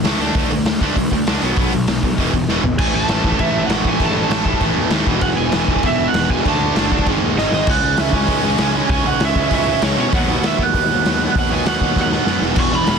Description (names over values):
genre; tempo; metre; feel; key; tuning
punk rock; 196 BPM; 4/4; straight; unclear; A4 = 440 Hz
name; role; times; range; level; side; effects
distorted electric guitar; riff; 0.0-13.0 s; E2 to D4; -22 LUFS; left 14 dB; distortion
distorted electric guitar; riff; 0.0-13.0 s; E2 to D4; -22 LUFS; right 15 dB; overdrive
fuzz picked electric bass; bass; 0.0-13.0 s; E1 to B2; -23 LUFS; equal; overdrive
raw garage drum kit; drums; 0.0-12.9 s; crash cymbal, hi-hat, kick drum, snare drum, toms; -20 LUFS; equal; none
lead guitar through a small cranked amp; melody; 2.8-13.0 s; C#5 to C#6; -21 LUFS; right 6 dB; overdrive, tape echo
room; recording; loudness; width
little or no reverb; dense, heavily limited modern master; -14 LUFS; side -6 dB against mid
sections
0.0-2.8 A section; 2.8-7.7 B section; 7.7-13.0 C section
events
drum fill 2.5-2.8, 7.4-7.7, 12.0-12.6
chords
0.2 D5; 1.4 B5; 2.2 E; 2.8 A5; 5.1 E; 6.5 D; 7.1 G#5; 7.7 C#m; 10.1 B/D#; 12.4 E5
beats
0.05 | 0.35 0.66 0.96 1.27 | 1.57 1.88 2.18 2.49 | 2.79 3.10 3.40 3.71 | 4.01 4.32 4.62 4.93 | 5.24 5.54 5.85 6.15 | 6.46 6.76 7.07 7.37 | 7.68 7.99 8.29 8.60 | 8.90 9.21 9.51 9.82 | 10.12 10.43 10.74 11.04 | 11.35 11.65 11.96 12.26 | 12.57 12.87